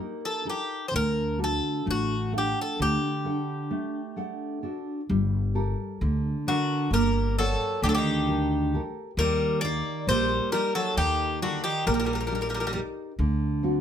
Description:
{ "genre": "greek folk, Greek bouzouki band", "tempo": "132 BPM (eighths)", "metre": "9/8", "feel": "straight", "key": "G harmonic minor", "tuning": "A4 = 439 Hz", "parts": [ { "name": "Greek bouzouki", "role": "melody", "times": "0.0-12.8 s", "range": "F#4 to D5", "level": "-28 LUFS", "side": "left 2 dB", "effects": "none" }, { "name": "nylon-string guitar", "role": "accompaniment", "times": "0.0-13.8 s", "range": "D3 to G5", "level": "-29 LUFS", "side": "right 1 dB", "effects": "none" }, { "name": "upright bass", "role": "bass", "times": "0.9-13.8 s", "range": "G1 to Eb2", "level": "-28 LUFS", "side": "equal", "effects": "none" }, { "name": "Greek bouzouki", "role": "second line", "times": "6.5-12.8 s", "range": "D3 to Bb3", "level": "-32 LUFS", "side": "right 1 dB", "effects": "none" } ], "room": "light reverb", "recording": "none", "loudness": "-24 LUFS", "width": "side -9 dB against mid", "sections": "0.0-5.1 A section; 5.1-13.8 B section", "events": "speeding up 0.0-13.8; break 3.0-5.1", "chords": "0.0 Eb; 0.9 D; 5.1 Gmadd9; 9.2 Eb; 13.2 D7" }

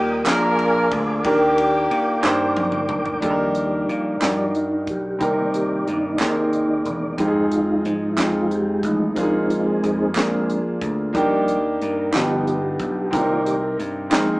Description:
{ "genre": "slow gospel", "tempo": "61 BPM (dotted quarters)", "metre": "6/8", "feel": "straight", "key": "Eb major", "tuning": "A4 = 439 Hz", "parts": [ { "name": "warm horn section", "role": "melody", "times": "0.0-2.6 s", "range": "Bb3 to Bb4", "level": "-22 LUFS", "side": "equal", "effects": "none" }, { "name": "clear grand piano", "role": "accompaniment", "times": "0.0-14.4 s", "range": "G2 to C5", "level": "-22 LUFS", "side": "equal", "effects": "none" }, { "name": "mellow tonewheel organ", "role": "sustained chords", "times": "0.0-14.4 s", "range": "Eb3 to Eb6", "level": "-23 LUFS", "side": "equal", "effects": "fast rotary speaker, chorus vibrato" }, { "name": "vintage slap bass", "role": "bass", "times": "0.0-14.4 s", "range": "Fb1 to Bb2", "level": "-27 LUFS", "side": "equal", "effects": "none" }, { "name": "crisp fusion drum kit", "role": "drums", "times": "0.3-14.3 s", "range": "hi-hat, kick drum, ride cymbal, snare drum, toms", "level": "-28 LUFS", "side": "equal", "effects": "none" }, { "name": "group handclap", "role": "percussion", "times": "0.3-14.4 s", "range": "none", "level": "-25 LUFS", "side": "right 2 dB", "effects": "none" } ], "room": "moderate studio reverb, RT60 0.8 s", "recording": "band playing live in one room, small speaker sound", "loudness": "-18 LUFS", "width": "side -22 dB against mid", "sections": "0.0-3.2 A section; 3.2-14.4 B section", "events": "drum fill 2.2-3.2; tonewheel organ solo 3.2-14.4", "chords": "0.3 Bb7; 1.2 Ebmaj7; 5.2 Cm7; 7.2 Fm7; 9.2 Bb7sus4; 10.2 Bb7; 11.1 Ebmaj7; 12.1 Gaug7; 13.1 Cm7" }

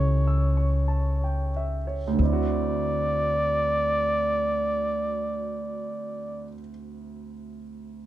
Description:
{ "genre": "jazz ballad", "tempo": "44 BPM", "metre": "4/4", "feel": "swing 67% on 8ths", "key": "unclear", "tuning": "A4 = 440 Hz", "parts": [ { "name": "warm flugelhorn", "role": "melody", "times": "0.0-6.5 s", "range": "C#5 to D5", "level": "-27 LUFS", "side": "equal", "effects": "none" }, { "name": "warm grand piano", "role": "accompaniment", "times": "0.0-8.1 s", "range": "D2 to E6", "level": "-31 LUFS", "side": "right 4 dB", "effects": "none" }, { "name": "upright bass", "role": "bass", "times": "0.0-6.5 s", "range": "C#2 to D2", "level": "-26 LUFS", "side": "left 1 dB", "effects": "none" } ], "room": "little or no reverb", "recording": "close, detailed microphones", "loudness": "-23 LUFS", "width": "side -13 dB against mid", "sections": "0.0-2.2 A section; 2.2-7.7 B section", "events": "slowing down 0.0-2.2", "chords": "0.0 A7; 2.2 D7" }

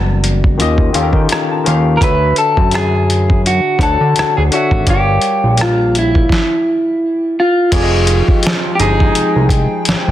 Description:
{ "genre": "R&B, neo-soul", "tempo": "84 BPM", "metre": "4/4", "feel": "swing 57% on 16ths", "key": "unclear", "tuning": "A4 = 442 Hz", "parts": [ { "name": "barky tine electric piano", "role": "accompaniment", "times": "0.0-10.1 s", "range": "D3 to Bb5", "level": "-19 LUFS", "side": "left 4 dB", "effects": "wide subtle chorus" }, { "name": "fat analog bass", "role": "bass", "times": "0.0-10.1 s", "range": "F1 to Eb3", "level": "-15 LUFS", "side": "equal", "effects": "none" }, { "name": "boom bap sampler-style drum kit", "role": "drums", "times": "0.2-10.1 s", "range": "crash cymbal, hi-hat, kick drum, rim click, snare drum", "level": "-16 LUFS", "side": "equal", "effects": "none" }, { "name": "electric guitar through a small old amp", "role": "melody", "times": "2.0-10.1 s", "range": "E4 to B4", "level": "-15 LUFS", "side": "equal", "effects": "tape echo" }, { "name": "hollow soft pad", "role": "sustained chords", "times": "8.2-10.1 s", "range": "F3 to G5", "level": "-23 LUFS", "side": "right 1 dB", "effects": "chorus" }, { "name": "warm horn section", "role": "stabs", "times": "7.7-9.5 s", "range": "C3 to Ab4", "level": "-20 LUFS", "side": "right 7 dB", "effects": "none" } ], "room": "light reverb, digital ambience", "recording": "dense, heavily limited modern master", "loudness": "-11 LUFS", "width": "side -12 dB against mid", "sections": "0.0-7.7 A section; 7.7-10.1 B section", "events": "tine electric piano fill 0.6-2.0", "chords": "0.0 Em9; 0.6 Eb9; 2.0 Dmaj7; 4.9 Gm7b5; 6.3 N.C.; 7.7 Fm9" }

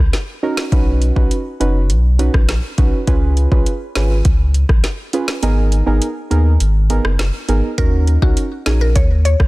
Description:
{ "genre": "dancehall", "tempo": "102 BPM", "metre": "4/4", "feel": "straight", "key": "Eb minor", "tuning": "A4 = 439 Hz", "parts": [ { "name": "warm sub bass", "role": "bass", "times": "0.0-9.5 s", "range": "F#1 to Eb2", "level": "-14 LUFS", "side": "equal", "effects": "none" }, { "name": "afro-pop drum kit", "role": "drums", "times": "0.1-9.5 s", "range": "hi-hat, kick drum, rim click, snare drum", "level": "-16 LUFS", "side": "equal", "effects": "overdrive" }, { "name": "deep mellow chord stab", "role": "accompaniment", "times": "0.4-8.9 s", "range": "Cb4 to B4", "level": "-21 LUFS", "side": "right 3 dB", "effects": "chorus" }, { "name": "mallet-like synth pluck", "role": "melody", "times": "7.8-9.4 s", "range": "Gb4 to Db5", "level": "-23 LUFS", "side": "left 2 dB", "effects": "chorus, tape echo" } ], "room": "little or no reverb", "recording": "dense, heavily limited modern master", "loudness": "-13 LUFS", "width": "side -20 dB against mid", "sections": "0.0-7.8 A section; 7.8-9.5 B section", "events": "kick muted 5.4-7.8", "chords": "0.0 Ebm7; 0.7 Badd9; 3.1 Db7; 5.4 Abmadd9; 7.8 Ebm7" }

